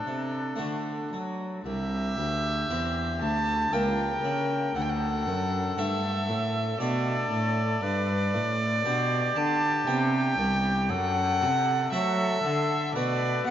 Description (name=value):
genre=classical, baroque-style sonata movement with continuo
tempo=58 BPM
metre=3/4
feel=straight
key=unclear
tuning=A4 = 445 Hz
part: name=warm oboe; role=melody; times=0.0-13.5 s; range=D4 to B4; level=-33 LUFS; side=left 4 dB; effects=none
part: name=warm violin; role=second line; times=0.0-13.5 s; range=A4 to A5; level=-28 LUFS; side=right 1 dB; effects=none
part: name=harpsichord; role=accompaniment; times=0.0-13.5 s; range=C2 to C5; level=-34 LUFS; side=left 1 dB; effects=none
part: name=rich cello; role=bass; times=0.0-13.5 s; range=C2 to B3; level=-29 LUFS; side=right 1 dB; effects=none
room=wet cathedral reverb, RT60 6.2 s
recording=in a vast, echoing space, nothing above 7.5 kHz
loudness=-24 LUFS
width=side -10 dB against mid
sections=0.0-1.7 A section; 1.7-13.5 B section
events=none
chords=0.0 Dsus4; 0.6 D; 1.7 C; 3.7 C#dim7; 4.8 D; 7.8 G; 9.9 Cmaj7; 10.9 F#dim; 13.0 Bm7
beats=0.61 | 1.66 2.70 3.73 | 4.76 5.78 6.80 | 7.83 8.85 9.87 | 10.90 11.93 12.96